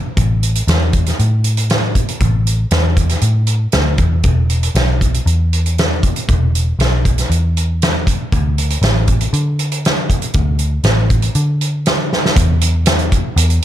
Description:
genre	rock, shoegaze and dream pop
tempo	118 BPM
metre	4/4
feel	straight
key	unclear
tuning	A4 = 439 Hz
part	vintage muted picked electric bass	bass	0.2-13.6 s	E1 to D3	-15 LUFS	equal	none
part	loose indie drum kit	drums	0.2-13.6 s	hi-hat, kick drum, snare drum	-16 LUFS	equal	none
room	little or no reverb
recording	faint mains hum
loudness	-13 LUFS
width	side -12 dB against mid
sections	0.0-12.4 A section; 12.4-13.6 B section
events	drum fill 12.1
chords	none

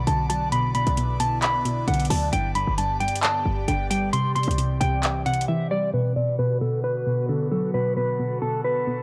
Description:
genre	hip hop, trap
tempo	133 BPM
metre	4/4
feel	half-time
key	B phrygian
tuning	A4 = 441 Hz
part	mellow electric guitar	melody	0.0-9.0 s	A4 to C6	-28 LUFS	equal	low-pass filter
part	soft round pluck	accompaniment	0.0-9.0 s	G2 to G3	-28 LUFS	equal	chorus, low-pass filter
part	airy breathy pad	sustained chords	0.0-9.0 s	D3 to D5	-36 LUFS	equal	chorus, phaser, low-pass filter
part	short 808-style bass	bass	0.0-5.5 s	G1 to D2	-30 LUFS	equal	none
part	trap drum kit	drums	0.1-5.5 s	handclaps, hi-hat	-31 LUFS	equal	none
room	digital ambience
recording	dry, gritty hardware recording, cassette tape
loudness	-24 LUFS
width	mono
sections	0.0-5.9 A section; 5.9-9.0 B section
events	silent gap 5.5-5.9; filter sweep 5.9-9.0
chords	0.0 Bm; 2.3 G; 4.1 Cadd9; 5.9 Bm

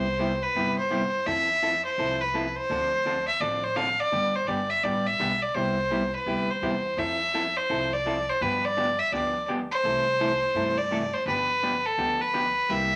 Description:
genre	country, western swing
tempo	168 BPM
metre	4/4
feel	swing 64% on 8ths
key	C major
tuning	A4 = 441 Hz
part	clear fiddle	melody	0.0-13.0 s	A4 to F5	-27 LUFS	equal	none
part	vintage hollow-body jazz guitar	accompaniment	0.0-12.9 s	C3 to A4	-33 LUFS	equal	none
part	upright bass	bass	0.0-13.0 s	G1 to G2	-42 LUFS	equal	none
room	wet club reverb, RT60 0.5 s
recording	none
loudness	-26 LUFS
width	mono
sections	0.0-13.0 A section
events	none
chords	0.0 Cmaj7; 1.3 Fmaj7; 2.7 Dm7; 4.1 G; 5.5 Cmaj7; 7.0 Fmaj7; 8.4 G7; 9.8 C6; 11.3 G7

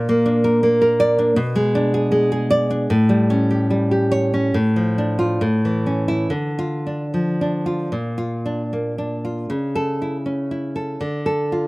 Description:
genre	romantic piece for solo classical guitar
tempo	66-82 BPM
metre	2/4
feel	rubato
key	D minor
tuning	A4 = 440 Hz
part	nylon-string guitar	solo	0.0-11.7 s	A2 to D5	-17 LUFS	equal	none
room	little or no reverb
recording	recorded outdoors, with no room sound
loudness	-17 LUFS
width	side -22 dB against mid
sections	0.0-6.3 A section; 6.3-11.7 B section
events	none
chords	0.0 Bb; 1.4 Bm6; 2.9 A7; 4.6 Dm/A; 5.4 A; 6.3 Dm; 7.9 Bb; 9.5 A/C#; 11.0 Dm

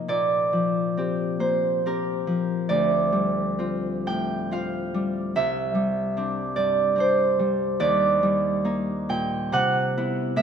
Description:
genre	classical, solo harp piece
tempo	61-75 BPM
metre	3/4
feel	rubato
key	unclear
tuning	A4 = 440 Hz
part	Celtic harp	solo	0.0-10.4 s	C2 to G5	-22 LUFS	right 1 dB	none
room	wet concert hall reverb, RT60 1.9 s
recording	none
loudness	-22 LUFS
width	side -7 dB against mid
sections	0.0-10.4 A section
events	none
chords	0.1 Bb69; 2.7 Dm7; 5.3 Cadd9; 7.8 Ebmaj7; 9.5 Cmaj7

